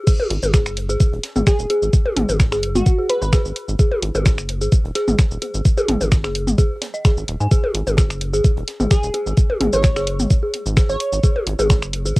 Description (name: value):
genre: minimal techno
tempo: 129 BPM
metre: 4/4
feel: swing 53% on 16ths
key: unclear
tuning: A4 = 440 Hz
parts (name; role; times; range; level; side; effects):
- dark detuned synth bell; riff; 0.1-12.1 s; G#4 to G#5; -25 LUFS; equal; chorus, sidechain pumping, cassette tape, tape echo
- electronic kick drum; drums; 0.1-12.2 s; none; -14 LUFS; equal; overdrive
- punchy analog drum machine; drums; 0.1-12.2 s; crash cymbal, finger snaps, hi-hat, shaker; -26 LUFS; equal; none
- tight funk drum kit; drums; 0.1-12.2 s; hi-hat, snare drum; -38 LUFS; right 1 dB; none
- electronic toms; percussion; 0.2-11.7 s; none; -22 LUFS; left 1 dB; none
- rubbery square bass; bass; 0.3-12.1 s; D#1 to G#2; -23 LUFS; equal; tube saturation, sidechain pumping
- glassy wavetable pluck; melody; 1.5-3.3, 8.9-11.4 s; F#4 to C#5; -24 LUFS; right 1 dB; chorus, cassette tape, analog delay
room: little or no reverb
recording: home recording on cassette, high-pass filter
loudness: -16 LUFS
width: side -21 dB against mid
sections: 0.1-12.2 A section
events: drop 0.1-12.2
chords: 0.1 G#7(no3)